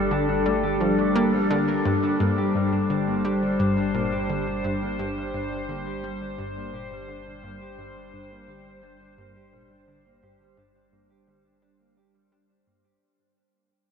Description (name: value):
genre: ambient, sequencer-driven space music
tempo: 86 BPM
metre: 4/4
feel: straight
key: G minor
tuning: A4 = 441 Hz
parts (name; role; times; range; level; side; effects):
- evolving wavetable pad; sustained chords; 0.0-13.0 s; G3 to C5; -25 LUFS; left 2 dB; chorus, built-in reverb
- mellow electric guitar; arpeggios; 0.0-13.0 s; G3 to Bb4; -32 LUFS; right 3 dB; auto-pan, tape echo
- round analog bass; bass; 0.0-13.0 s; G1; -41 LUFS; right 1 dB; none
- analog pluck; riff; 0.1-12.8 s; G2 to D4; -28 LUFS; right 1 dB; chorus, tape echo
room: wet huge ambient reverb, RT60 7.2 s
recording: in a vast, echoing space, nothing above 10.6 kHz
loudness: -22 LUFS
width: side -6 dB against mid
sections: 0.0-13.0 A section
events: fade-out on synth arpeggio sound 0.0-13.0; fade-out on clean electric guitar 0.0-13.0; fade-out on analog synth bass 0.0-13.0; fade-out 0.0-13.0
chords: 0.0 Gmadd9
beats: 0.46 1.16 | 1.85 2.55 3.25 3.95 | 4.64 5.34 6.04 6.74 | 7.43 8.13 8.83 9.53 | 10.22 10.92 11.62 12.32